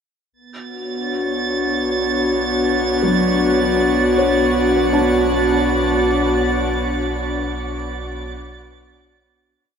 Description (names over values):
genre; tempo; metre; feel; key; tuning
ambient; free time; none; none; B minor; A4 = 437 Hz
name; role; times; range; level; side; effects
airy breathy pad; sustained chords; 0.3-9.6 s; B3 to C#5; -18 LUFS; left 1 dB; chorus
warm sub bass; bass; 0.3-9.6 s; B1; -28 LUFS; right 2 dB; none
drifting glass-harmonics texture; texture; 0.7-9.6 s; A6; -25 LUFS; right 4 dB; chorus, built-in reverb
felt-muted upright piano; arpeggios; 3.0-9.6 s; F#3 to A5; -22 LUFS; left 1 dB; diffuse ambient delay
room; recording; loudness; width
wet shimmer reverb, RT60 8.7 s; none; -16 LUFS; side -7 dB against mid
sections
0.3-9.6 A section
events
fade-in on sub bass 0.3-9.6; fade-out 6.5-9.6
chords
0.3 Bm7